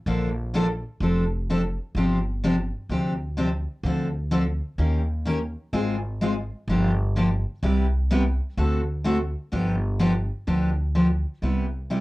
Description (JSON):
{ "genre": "acoustic string swing (jazz manouche)", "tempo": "127 BPM", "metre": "4/4", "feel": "swing 65% on 8ths", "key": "unclear", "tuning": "A4 = 440 Hz", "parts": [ { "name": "picked steel-string acoustic guitar", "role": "accompaniment", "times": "0.1-12.0 s", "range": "C3 to Bb4", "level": "-23 LUFS", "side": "equal", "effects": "none" }, { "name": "upright bass", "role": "bass", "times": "0.1-12.0 s", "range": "F1 to Eb2", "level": "-26 LUFS", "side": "equal", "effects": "none" } ], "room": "moderate small room reverb, RT60 0.6 s", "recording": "worn, warbling old tape, cassette tape, warbly pitch drift", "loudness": "-22 LUFS", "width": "side -19 dB against mid", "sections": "0.0-11.4 A section", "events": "none", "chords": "0.1 Bbmaj7; 1.0 F6; 1.9 G7sus4; 3.8 Dm7; 4.8 Eb7; 5.7 Ab6; 6.7 Gm7; 7.6 Cmaj7; 8.6 D7; 9.5 G7; 11.4 Cmaj7" }